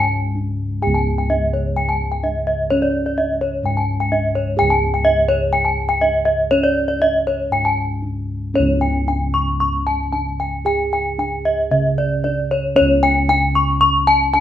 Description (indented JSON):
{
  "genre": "Balinese gamelan",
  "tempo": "114-128 BPM",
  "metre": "4/4",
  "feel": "straight",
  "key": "C# pelog",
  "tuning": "A4 = 440 Hz",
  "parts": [
    { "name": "gamelan-type bronze metallophone", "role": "arpeggios", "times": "0.0-14.4 s", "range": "C#5 to C#6", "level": "-17 LUFS", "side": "left 1 dB", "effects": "none" },
    { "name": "gamelan-type bossed gongs", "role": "bass", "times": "0.0-14.4 s", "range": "C#2 to G#4-45c", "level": "-20 LUFS", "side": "equal", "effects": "none" }
  ],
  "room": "moderate stone room reverb, RT60 0.9 s",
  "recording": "band playing live in one room",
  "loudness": "-16 LUFS",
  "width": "side -11 dB against mid",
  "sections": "0.0-8.6 A section; 8.6-14.4 B section",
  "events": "break 0.1-0.8, 7.8-8.6",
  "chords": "none"
}